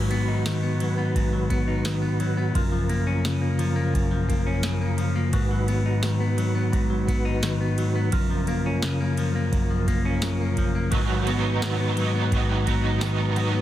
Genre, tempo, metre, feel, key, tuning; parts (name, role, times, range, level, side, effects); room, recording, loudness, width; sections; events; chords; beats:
dream pop; 86 BPM; 4/4; straight; A4 = 440 Hz
percussive tonewheel organ; sustained chords; 0.0-13.6 s; F#2 to B4; -26 LUFS; right 1 dB; chorus vibrato, slow rotary speaker
clean electric guitar; arpeggios; 0.0-13.6 s; F#2 to D#4; -25 LUFS; left 3 dB; wide subtle chorus, tape echo
booming analog drum machine; drums; 0.1-13.5 s; kick drum, ride cymbal, snare drum, tambourine; -28 LUFS; right 1 dB
crunchy overdriven guitar; accompaniment; 10.9-13.6 s; G#2 to D#4; -30 LUFS; right 6 dB; tremolo, ensemble chorus
little or no reverb; dense, heavily limited modern master; -21 LUFS; side -13 dB against mid
0.0-13.6 A section
0.0 G#m7; 2.5 F#maj7; 5.3 G#m7; 8.1 F#maj7; 10.9 G#m7
0.45 1.15 1.85 | 2.55 3.25 3.94 4.64 | 5.34 6.04 6.73 7.43 | 8.13 8.83 9.52 10.22 | 10.92 11.62 12.31 13.01